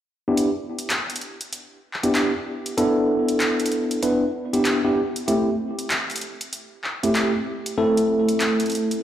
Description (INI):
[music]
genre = glitch hop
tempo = 96 BPM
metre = 4/4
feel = swing 62% on 16ths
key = E minor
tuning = A4 = 441 Hz
[part]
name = bell-like tine electric piano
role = stabs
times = 0.3-9.0 s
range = A3 to B4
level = -20 LUFS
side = equal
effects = medium stereo tremolo, low-pass filter, digital delay
[part]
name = drum and bass drum kit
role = drums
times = 0.4-9.0 s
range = handclaps, hi-hat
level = -26 LUFS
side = equal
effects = overdrive
[sound]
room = moderate lush hall reverb, RT60 1.9 s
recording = played on a big sound system in a bare room, large studio reverb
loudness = -20 LUFS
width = side -10 dB against mid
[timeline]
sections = 0.3-9.0 A section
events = none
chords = 0.3 Em7; 5.3 Am7